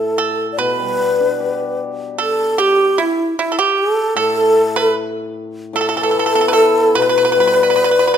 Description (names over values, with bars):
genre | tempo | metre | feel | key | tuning
chinese traditional, Chinese chamber ensemble | 75 BPM | 4/4 | rubato | A shang mode | A4 = 440 Hz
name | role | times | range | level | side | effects
breathy low xiao | melody | 0.0-8.2 s | E4 to D5 | -15 LUFS | equal | none
pipa | second line | 0.0-8.2 s | E4 to B4 | -19 LUFS | right 6 dB | none
hammered dulcimer | accompaniment | 0.0-8.2 s | A2 to G4 | -20 LUFS | left 4 dB | none
room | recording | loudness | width
moderate recital hall reverb, RT60 1.4 s | close, detailed microphones | -13 LUFS | side -8 dB against mid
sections
0.0-8.2 A section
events
none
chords
none